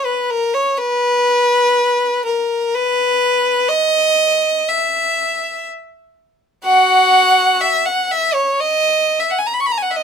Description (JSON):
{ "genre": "classical, free, expressive piece for unaccompanied violin", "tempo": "61 BPM", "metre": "4/4", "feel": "rubato", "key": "unclear", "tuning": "A4 = 441 Hz", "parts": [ { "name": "clear violin", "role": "solo", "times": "0.0-10.0 s", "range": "F#4 to C#6", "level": "-13 LUFS", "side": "equal", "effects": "none" } ], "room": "light reverb", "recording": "minimal, uncompressed stereo recording", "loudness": "-13 LUFS", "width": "side -6 dB against mid", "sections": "0.0-10.0 A section", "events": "none", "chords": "none" }